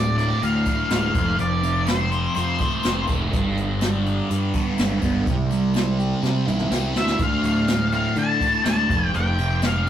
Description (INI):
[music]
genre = psychedelic rock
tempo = 124 BPM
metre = 4/4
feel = straight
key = D dorian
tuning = A4 = 441 Hz
[part]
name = octave-fuzz lead guitar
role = melody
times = 0.0-3.0, 7.0-9.9 s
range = C5 to A5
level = -24 LUFS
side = left 2 dB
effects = distortion
[part]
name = thick fuzz guitar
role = riff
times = 0.0-9.9 s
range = D2 to G4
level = -23 LUFS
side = equal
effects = distortion, phaser
[part]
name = fuzz fingered electric bass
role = bass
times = 0.0-9.9 s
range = D1 to D3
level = -25 LUFS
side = equal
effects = overdrive
[part]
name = tambourine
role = percussion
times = 0.1-9.8 s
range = none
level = -46 LUFS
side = left 5 dB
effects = none
[part]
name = jazz brush drum kit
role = drums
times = 0.2-9.9 s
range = hi-hat, kick drum, snare drum, toms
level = -25 LUFS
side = equal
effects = none
[sound]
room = moderate studio ambience, RT60 0.5 s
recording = rough rehearsal-room recording, warm saturation, faint mains hum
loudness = -19 LUFS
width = side -10 dB against mid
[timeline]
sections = 0.0-9.9 A section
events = drum fill 6.2-7.2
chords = 0.0 Dm; 1.1 F; 3.3 G; 5.3 C; 7.2 Dm; 8.9 F